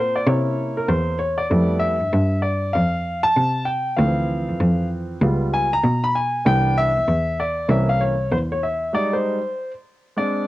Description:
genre	hip hop, jazz-hop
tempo	97 BPM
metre	4/4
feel	swing 62% on 16ths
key	C major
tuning	A4 = 435 Hz
part	clear upright piano	accompaniment	0.0-10.5 s	E3 to Cb6	-21 LUFS	equal	cassette tape
part	rich cello	bass	0.0-8.9 s	C2 to C3	-21 LUFS	equal	none
room	light reverb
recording	home recording on cassette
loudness	-18 LUFS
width	side -16 dB against mid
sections	0.0-10.5 A section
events	upright piano solo 0.0-10.5; break 8.9-10.5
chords	0.3 C7b9; 1.5 Fmaj9#11; 4.0 Dm9; 5.2 Db7#11; 6.5 Cmaj7; 7.7 C7b9; 8.9 Abmaj7#11/G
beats	0.28 0.90 | 1.51 2.13 2.75 3.37 | 3.99 4.61 5.23 5.84 | 6.46 7.08 7.70 8.32 | 8.94 9.56 10.17

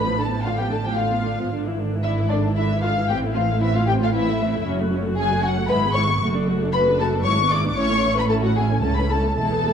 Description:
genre	quick classical-period movement for string orchestra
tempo	114 BPM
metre	3/4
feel	straight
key	A minor, A major from 4.7 s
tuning	A4 = 441 Hz
part	dark symphonic violin section	melody	0.0-9.7 s	D5 to D6	-24 LUFS	left 4 dB	none
part	warm symphonic violin section	second line	0.0-9.7 s	D4 to D5	-26 LUFS	left 2 dB	none
part	warm symphonic viola section	accompaniment	0.0-9.7 s	D3 to A4	-26 LUFS	equal	none
part	dark symphonic cello section	bass	0.0-9.7 s	C#2 to A2	-26 LUFS	right 2 dB	none
part	warm symphonic double bass section	bass	0.0-9.7 s	E1 to C#2	-25 LUFS	right 2 dB	none
room	wet recital hall reverb, RT60 1.7 s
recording	dark, warm production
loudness	-18 LUFS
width	side -8 dB against mid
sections	0.0-9.7 A section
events	none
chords	0.0 Bm7b5/A; 1.5 E7/G#; 3.1 Am; 4.7 F#m; 5.7 E/G#; 6.2 D/F#; 7.3 E7/G#; 7.8 A; 8.8 A/C#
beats	0.45 0.98 | 1.51 2.04 2.57 | 3.10 3.62 4.14 | 4.66 5.17 5.70 | 6.22 6.74 7.25 | 7.77 8.30 8.83 | 9.37

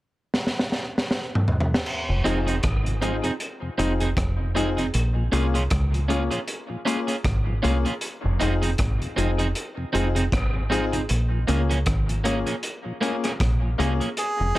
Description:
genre	dub reggae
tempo	78 BPM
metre	4/4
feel	swing 58% on 16ths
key	F minor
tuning	A4 = 440 Hz
part	crunchy breakbeat drum kit	drums	0.3-14.6 s	crash cymbal, hi-hat, kick drum, rim click, snare drum, toms	-26 LUFS	equal	none
part	mellow tonewheel organ	accompaniment	2.1-14.6 s	F2 to Eb4	-33 LUFS	left 1 dB	slow rotary speaker
part	deep dub fingered electric bass	bass	2.1-14.5 s	F1 to Db2	-24 LUFS	equal	none
part	electric guitar at the edge of break-up	accompaniment	2.2-14.6 s	Bb3 to Ab4	-29 LUFS	right 3 dB	warbly pitch drift, dub echo
part	warm upright piano	stabs	2.2-14.6 s	Bb3 to Ab4	-29 LUFS	left 4 dB	dub echo
part	melodica	melody	14.2-14.6 s	Ab4	-24 LUFS	right 1 dB	none
room	light reverb, small room ambience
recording	none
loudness	-22 LUFS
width	side -17 dB against mid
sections	0.0-1.9 A section; 1.9-14.2 B section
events	drum fill 0.3-1.9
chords	0.0 N.C.; 1.9 Fm7; 4.9 Bbm7; 8.0 Fm7; 11.1 Bbm7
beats	0.33 1.09 | 1.86 2.63 3.40 4.17 | 4.94 5.71 6.48 7.25 | 8.01 8.78 9.55 10.32 | 11.09 11.86 12.63 13.40 | 14.17

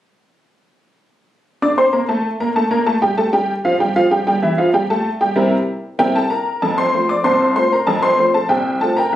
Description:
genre	ragtime piano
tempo	96 BPM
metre	2/4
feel	straight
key	F major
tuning	A4 = 442 Hz
part	honky-tonk upright piano	solo	1.6-9.2 s	F1 to D6	-14 LUFS	equal	none
room	moderate studio ambience, RT60 0.4 s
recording	recorded on a phone in the room, club reverb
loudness	-14 LUFS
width	side -12 dB against mid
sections	1.6-6.6 A section; 6.6-9.2 B section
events	none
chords	1.6 F; 4.1 C7; 6.6 F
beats	| 1.62 2.25 | 2.87 3.49 | 4.11 4.74 | 5.36 5.99 | 6.62 7.25 | 7.87 8.50 | 9.12

